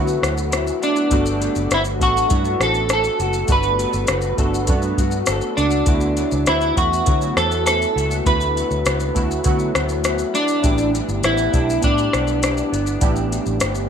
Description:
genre	indie pop, bedroom pop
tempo	101 BPM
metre	4/4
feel	straight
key	D major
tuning	A4 = 439 Hz
part	clean electric guitar	melody	0.0-13.9 s	D4 to B4	-21 LUFS	right 1 dB	analog chorus, plate reverb, tape echo
part	electric guitar through a small old amp	accompaniment	0.0-13.9 s	A2 to A4	-26 LUFS	left 8 dB	ensemble chorus, vibrato effect
part	warm analog keys	accompaniment	0.0-13.9 s	A3 to G4	-26 LUFS	right 6 dB	chorus
part	vintage muted fingered electric bass	bass	0.0-13.9 s	F#1 to D3	-24 LUFS	equal	none
part	soft vintage rhythm box	drums	0.1-13.9 s	hi-hat, kick drum, rim click, shaker	-22 LUFS	left 1 dB	overdrive
room	light reverb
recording	none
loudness	-16 LUFS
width	side -7 dB against mid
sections	0.0-13.9 A section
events	none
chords	0.0 D69; 1.1 Gmaj9; 5.9 D69; 10.6 A9sus4

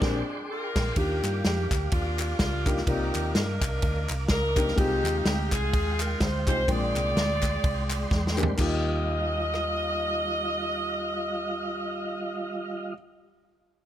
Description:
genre	uptempo gospel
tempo	126 BPM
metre	4/4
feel	swing 56% on 8ths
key	Eb major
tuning	A4 = 440 Hz
part	edgy saxophone section	melody	0.0-12.9 s	F3 to Eb5	-30 LUFS	equal	none
part	warm grand piano	accompaniment	0.0-12.9 s	Eb2 to G5	-32 LUFS	left 3 dB	none
part	mellow tonewheel organ	sustained chords	0.0-12.9 s	G3 to D6	-34 LUFS	right 2 dB	fast rotary speaker, chorus vibrato
part	hollow-body short-scale fingered electric bass	bass	0.0-12.9 s	Bb1 to G2	-30 LUFS	equal	none
part	natural country drum kit	drums	0.0-9.7 s	crash cymbal, kick drum, ride cymbal, rim click, snare drum, toms	-28 LUFS	equal	none
part	group handclap	percussion	1.2-8.8 s	none	-34 LUFS	left 3 dB	none
room	light reverb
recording	none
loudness	-24 LUFS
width	side -11 dB against mid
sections	1.0-8.6 A section; 8.6-12.4 B section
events	band accent 0.0-1.0; drum fill 8.1-8.6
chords	0.0 Bb13; 1.0 Ebmaj9; 2.9 Cm11; 4.8 Fm9/C; 6.7 Bb13; 8.6 Ebadd9

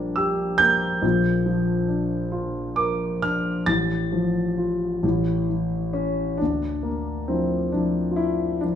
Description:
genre	classical, lyrical solo piano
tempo	45 BPM (dotted quarters)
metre	6/8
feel	rubato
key	D minor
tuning	A4 = 442 Hz
part	dark concert grand piano	solo	0.0-8.8 s	A1 to A6	-21 LUFS	equal	none
room	wet recital hall reverb, RT60 1.5 s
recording	studio ambience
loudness	-21 LUFS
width	side -9 dB against mid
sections	0.0-6.4 A section; 6.4-8.8 B section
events	none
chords	0.0 Gm/Bb; 1.0 Bb; 3.7 F/A; 5.0 A; 6.4 Dmadd9

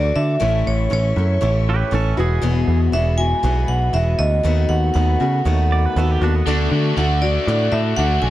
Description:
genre	folk rock and heartland rock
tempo	119 BPM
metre	4/4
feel	straight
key	E mixolydian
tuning	A4 = 440 Hz
part	vibraphone with hard mallets	melody	0.0-8.3 s	C#5 to G#5	-23 LUFS	right 1 dB	analog delay
part	clear upright piano	accompaniment	0.0-8.3 s	C#4 to D5	-31 LUFS	right 5 dB	none
part	picked steel-string acoustic guitar	accompaniment	0.0-8.3 s	E2 to F#4	-24 LUFS	left 7 dB	none
part	muted studio string section	sustained chords	0.0-8.3 s	G#4 to D6	-33 LUFS	equal	none
part	picked electric bass	bass	0.0-8.3 s	E1 to D3	-18 LUFS	equal	none
part	twangy electric guitar	second line	1.7-6.7 s	B3 to D5	-27 LUFS	right 6 dB	spring reverb
part	crunchy overdriven guitar	riff	6.5-8.3 s	D3 to F#4	-24 LUFS	equal	none
room	little or no reverb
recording	dark, warm production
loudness	-16 LUFS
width	side -14 dB against mid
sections	0.0-8.3 A section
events	none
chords	0.4 A; 2.2 Eadd9; 4.4 B7/D#; 6.5 D

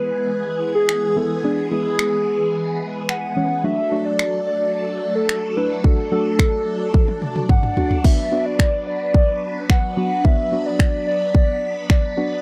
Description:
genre	dance-pop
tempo	109 BPM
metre	4/4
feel	straight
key	B minor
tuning	A4 = 440 Hz
part	hollow clarinet-like synth lead	melody	0.0-12.4 s	G#4 to F#5	-24 LUFS	equal	chorus, tremolo, slapback echo
part	deep mellow chord stab	accompaniment	0.0-12.3 s	E3 to F#4	-27 LUFS	equal	chorus, sidechain pumping
part	phased string machine	sustained chords	0.0-12.4 s	E3 to B4	-30 LUFS	equal	ensemble chorus, phaser, sidechain pumping
part	pop drum kit	drums	0.9-12.0 s	crash cymbal, finger snaps, kick drum, toms	-19 LUFS	equal	none
room	light reverb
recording	dry, close 1970s-style studio recording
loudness	-20 LUFS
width	mono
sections	0.0-12.4 A section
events	drum fill 6.9-8.0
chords	0.0 E; 3.6 D; 8.0 Bm

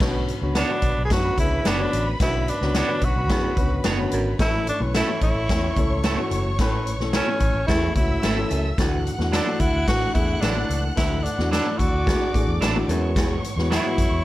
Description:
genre	uptempo 1960s-style soul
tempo	109 BPM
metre	4/4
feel	straight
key	B dorian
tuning	A4 = 440 Hz
part	warm studio violin section	second line	0.0-14.2 s	B4 to F#6	-32 LUFS	equal	none
part	warm upright piano	accompaniment	0.0-14.2 s	D3 to C#5	-28 LUFS	left 2 dB	plate reverb
part	clear baritone saxophone	riff	0.0-13.4 s	D2 to B2	-30 LUFS	right 3 dB	none
part	vintage muted fingered electric bass	bass	0.0-14.2 s	F#1 to A2	-26 LUFS	equal	none
part	swinging big-band drum kit	drums	0.0-14.1 s	crash cymbal, hi-hat, kick drum, snare drum	-24 LUFS	equal	none
part	breathy tenor saxophone	melody	0.6-14.2 s	C#4 to G#4	-26 LUFS	equal	plate reverb
part	electric guitar at the edge of break-up	stabs	0.6-13.9 s	F#3 to C#5	-29 LUFS	right 6 dB	spring reverb, plate reverb
room	light reverb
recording	none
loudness	-20 LUFS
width	side -16 dB against mid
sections	0.0-14.2 A section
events	none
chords	0.0 Bmadd9; 4.4 A; 8.8 Dadd9; 12.9 Eadd9

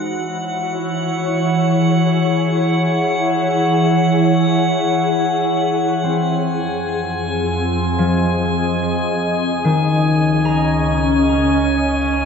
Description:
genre	ambient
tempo	free time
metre	none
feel	none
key	unclear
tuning	A4 = 440 Hz
part	glassy FM pad	sustained chords	0.0-12.3 s	Db3 to Eb5	-17 LUFS	equal	ensemble chorus, built-in reverb
part	drifting glass-harmonics texture	texture	0.0-12.3 s	Gb5 to Ab5	-22 LUFS	left 2 dB	chorus, built-in reverb
part	concert harp	arpeggios	6.0-12.3 s	Eb3 to Bb5	-20 LUFS	left 3 dB	ping-pong delay
part	deep rumbling drone	bass	6.7-12.3 s	Db2 to F2	-26 LUFS	right 1 dB	built-in reverb
room	wet cathedral reverb, RT60 5.0 s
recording	none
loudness	-15 LUFS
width	side -6 dB against mid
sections	0.0-6.0 A section; 6.0-12.3 B section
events	filter sweep on ambient pad 6.0-12.3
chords	0.0 E6; 6.0 Fm7; 9.4 Dbsus2

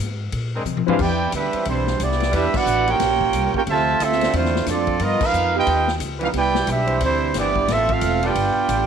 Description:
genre	jazz, big band swing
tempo	179 BPM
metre	4/4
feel	swing 62% on 8ths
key	C major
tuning	A4 = 440 Hz
part	upright bass	bass	0.0-8.9 s	E1 to C3	-25 LUFS	left 1 dB	none
part	swinging big-band drum kit	drums	0.3-8.8 s	crash cymbal, hi-hat, kick drum, ride cymbal, snare drum, toms	-27 LUFS	left 7 dB	none
part	clear trombone section	sustained chords	0.5-8.3 s	D3 to C5	-30 LUFS	left 1 dB	none
part	mellow trumpet section	melody	0.9-8.9 s	G3 to A5	-20 LUFS	right 3 dB	none
part	clear trombone section	second line	0.9-8.9 s	C3 to G4	-26 LUFS	right 12 dB	none
part	warm baby grand piano	accompaniment	0.9-1.0 s	C4 to B4	-26 LUFS	left 15 dB	none
room	light reverb, small room ambience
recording	1960s-style stereo with parts hard left and right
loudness	-18 LUFS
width	side -7 dB against mid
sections	1.0-8.9 A section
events	drum fill 0.7-1.0; band accent 2.5, 5.2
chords	0.3 Bb9; 1.0 Cmaj9; 2.3 Em7; 3.0 Bbm69; 3.7 Dm9; 5.0 G7alt; 6.3 Cmaj9; 7.7 Dm9; 8.4 G9

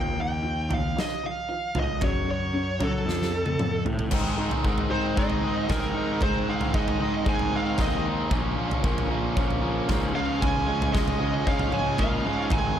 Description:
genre	quiet-loud alternative rock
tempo	114 BPM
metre	4/4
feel	straight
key	unclear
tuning	A4 = 443 Hz
part	bluesy overdriven lead guitar	melody	0.0-12.8 s	A4 to Ab5	-30 LUFS	right 2 dB	distortion, tape echo
part	electric guitar through a small old amp	arpeggios	0.0-12.8 s	F2 to F4	-32 LUFS	left 1 dB	phaser
part	fuzz picked electric bass	bass	0.0-12.8 s	Ab1 to Gb3	-30 LUFS	equal	overdrive
part	huge arena drum kit	drums	0.7-12.6 s	crash cymbal, kick drum, snare drum, toms	-28 LUFS	equal	none
part	biting overdriven guitar	riff	4.1-12.8 s	Ab2 to Eb4	-29 LUFS	equal	none
room	light reverb, studio reverb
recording	none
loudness	-23 LUFS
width	side -10 dB against mid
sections	0.0-4.1 A section; 4.1-12.8 B section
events	half time 0.0-4.1; drum fill 3.1-4.1; lead electric guitar solo 4.1-12.8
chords	0.0 Ebadd9; 2.0 Gb5; 3.1 F; 4.1 Ab; 8.3 Bbm; 10.2 Db

